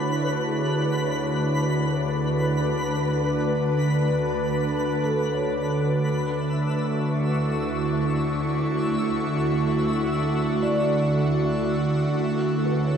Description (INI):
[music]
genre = ambient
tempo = 59 BPM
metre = 3/4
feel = straight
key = D major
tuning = A4 = 440 Hz
[part]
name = airy breathy pad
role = sustained chords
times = 0.0-13.0 s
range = D3 to C#6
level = -23 LUFS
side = right 1 dB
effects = chorus
[part]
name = warm symphonic cello section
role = bass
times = 0.0-13.0 s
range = D2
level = -34 LUFS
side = left 1 dB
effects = none
[part]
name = organ-like drone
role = drone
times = 0.0-13.0 s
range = D3 to D4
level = -30 LUFS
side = left 1 dB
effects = ensemble chorus, built-in reverb
[part]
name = twinkling granular texture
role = texture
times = 0.0-13.0 s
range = B4 to E6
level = -32 LUFS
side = left 1 dB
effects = built-in reverb
[part]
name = felt-muted upright piano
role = arpeggios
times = 0.5-13.0 s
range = G#4 to D5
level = -32 LUFS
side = left 2 dB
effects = ping-pong delay
[sound]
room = wet scoring stage reverb, RT60 1.9 s, studio ambience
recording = cassette tape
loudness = -21 LUFS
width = side -7 dB against mid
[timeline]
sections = 0.0-13.0 A section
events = fade-in on felt piano 0.0-13.0; fade-in on cello section 0.0-13.0; fade-out on synth drone 0.0-13.0; fade-out on synth texture 0.0-13.0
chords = 0.0 Bm7/D; 6.0 Dmaj9